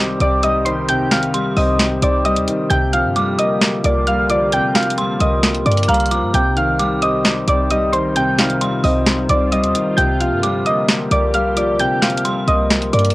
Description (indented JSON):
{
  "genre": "hip hop, trap",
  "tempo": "132 BPM",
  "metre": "4/4",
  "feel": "half-time",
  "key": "C minor",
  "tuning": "A4 = 441 Hz",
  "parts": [
    { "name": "clear concert grand piano", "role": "accompaniment", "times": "0.0-13.1 s", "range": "C3 to C4", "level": "-20 LUFS", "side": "left 1 dB", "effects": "cassette tape" },
    { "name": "sweeping resonant pad", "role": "sustained chords", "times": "0.1-13.1 s", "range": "C3 to G4", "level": "-28 LUFS", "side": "right 1 dB", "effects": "chorus, cassette tape" },
    { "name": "short 808-style bass", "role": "bass", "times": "0.0-13.1 s", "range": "C2 to G2", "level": "-20 LUFS", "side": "equal", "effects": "none" },
    { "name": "soft round pluck", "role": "melody", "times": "0.2-13.1 s", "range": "C5 to G6", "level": "-18 LUFS", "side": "equal", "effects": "chorus, cassette tape" },
    { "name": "trap drum kit", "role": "drums", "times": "0.2-13.1 s", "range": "hi-hat, snare drum", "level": "-19 LUFS", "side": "equal", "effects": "cassette tape" },
    { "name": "dark detuned synth bell", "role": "second line", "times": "1.3-13.1 s", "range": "Bb5 to D6", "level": "-26 LUFS", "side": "right 2 dB", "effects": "chorus, cassette tape, analog delay" }
  ],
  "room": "light reverb",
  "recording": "home recording on cassette",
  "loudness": "-14 LUFS",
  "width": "side -19 dB against mid",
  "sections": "0.0-13.1 A section",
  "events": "none",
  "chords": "0.0 Cm; 2.7 Gm7/C; 6.3 Cm; 10.0 Gm7/C",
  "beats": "0.43 | 0.89 1.34 1.79 2.25 | 2.70 3.16 3.61 4.07 | 4.52 4.98 5.43 5.89 | 6.34 6.79 7.25 7.70 | 8.16 8.61 9.07 9.52 | 9.98 10.43 10.89 11.34 | 11.79 12.25 12.70"
}